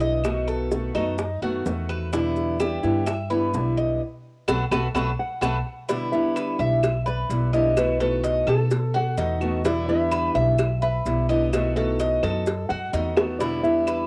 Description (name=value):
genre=latin, Cuban son and guajira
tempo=128 BPM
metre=4/4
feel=straight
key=E minor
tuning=A4 = 444 Hz
part: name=fingerpicked steel-string acoustic guitar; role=accompaniment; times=0.0-14.1 s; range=B2 to F#4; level=-29 LUFS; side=equal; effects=none
part: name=Cuban tres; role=arpeggios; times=0.0-14.1 s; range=D#4 to E5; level=-30 LUFS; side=equal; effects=plate reverb
part: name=upright bass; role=bass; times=0.0-14.0 s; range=B1 to B2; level=-29 LUFS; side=equal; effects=none
part: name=bongos and cowbell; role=percussion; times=0.0-14.1 s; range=none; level=-29 LUFS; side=equal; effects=none
part: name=maracas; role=percussion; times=0.0-14.1 s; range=none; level=-48 LUFS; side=equal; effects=none
part: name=claves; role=percussion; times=0.2-14.1 s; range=none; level=-40 LUFS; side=equal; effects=none
part: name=nylon-string guitar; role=melody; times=5.2-14.1 s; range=A4 to F#5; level=-30 LUFS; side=equal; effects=cassette tape, plate reverb, tape echo
room=moderate studio reverb, RT60 0.5 s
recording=home recording on cassette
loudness=-24 LUFS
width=mono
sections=0.0-5.9 A section; 5.9-14.1 B section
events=band accent 4.0-5.9; drum fill 5.0-5.9, 13.2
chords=0.2 B7; 2.1 Em7; 4.0 B5; 5.9 Em7; 7.8 B7; 9.7 Em7; 11.5 B7; 13.4 Em7